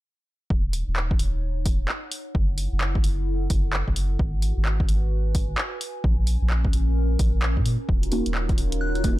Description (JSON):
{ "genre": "UK garage, two-step garage", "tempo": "130 BPM", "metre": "4/4", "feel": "swing 63% on 16ths", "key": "Eb minor", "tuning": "A4 = 440 Hz", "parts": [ { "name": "soft dub sub bass", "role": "bass", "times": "0.5-9.2 s", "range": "Eb1 to Bb2", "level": "-24 LUFS", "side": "equal", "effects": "none" }, { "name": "electronic kick drum", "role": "drums", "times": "0.5-9.2 s", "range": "none", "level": "-24 LUFS", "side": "equal", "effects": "none" }, { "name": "warbly tape-like pad", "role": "texture", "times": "0.5-9.2 s", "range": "Db4 to Ab5", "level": "-35 LUFS", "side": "equal", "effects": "chorus, built-in reverb, sidechain pumping" }, { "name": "punchy analog drum machine", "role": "drums", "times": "0.7-9.2 s", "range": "handclaps, hi-hat", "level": "-30 LUFS", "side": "equal", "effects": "none" }, { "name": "warm analog pad", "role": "sustained chords", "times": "7.9-9.2 s", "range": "Db4 to Bb4", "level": "-34 LUFS", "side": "left 2 dB", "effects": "chorus, sidechain pumping" }, { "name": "deep mellow chord stab", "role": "stabs", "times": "8.1-9.2 s", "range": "Bb3 to Gb4", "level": "-28 LUFS", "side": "right 2 dB", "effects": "chorus, tape echo" }, { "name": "soft synth bell", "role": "melody", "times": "8.8-9.0 s", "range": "Gb6", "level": "-32 LUFS", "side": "left 2 dB", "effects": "chorus" } ], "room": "digital ambience", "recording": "dark, warm production", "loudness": "-21 LUFS", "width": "side -17 dB against mid", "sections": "0.5-9.2 A section", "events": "fade-in on ambient pad 0.5-9.2; filter sweep on sub bass 0.5-9.2", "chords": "0.5 Ebm7; 2.3 Gbm7; 4.2 Abm7; 6.0 Bbm7; 7.9 Ebm7", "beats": "| 0.50 0.96 1.43 1.89 | 2.35 2.81 3.27 3.73 | 4.20 4.66 5.12 5.58 | 6.04 6.50 6.96 7.43 | 7.89 8.35 8.81" }